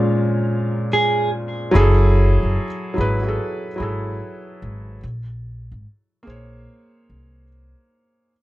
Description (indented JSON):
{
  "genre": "lo-fi hip hop",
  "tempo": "73 BPM",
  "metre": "4/4",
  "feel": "swing 66% on 16ths",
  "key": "unclear",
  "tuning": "A4 = 440 Hz",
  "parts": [
    { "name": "electric guitar at the edge of break-up", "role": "melody", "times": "0.0-1.3 s", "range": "F4 to Ab4", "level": "-22 LUFS", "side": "equal", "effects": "tape echo" },
    { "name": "felt-muted upright piano", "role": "accompaniment", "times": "0.0-8.3 s", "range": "Bb2 to Db5", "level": "-21 LUFS", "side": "right 1 dB", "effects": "none" },
    { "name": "upright bass", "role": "bass", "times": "1.8-7.7 s", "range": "Gb1 to C2", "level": "-19 LUFS", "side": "equal", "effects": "none" }
  ],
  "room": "light reverb",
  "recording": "dark, warm production",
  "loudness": "-17 LUFS",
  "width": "side -16 dB against mid",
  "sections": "0.0-8.3 A section",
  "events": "break 0.0-1.7; fade-out 0.0-8.3",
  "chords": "0.0 Bbm9; 1.7 Gbm9; 5.0 Bbm9",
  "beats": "0.09 0.91 | 1.74 2.56 3.38 4.20 | 5.02 5.85 6.67 7.49"
}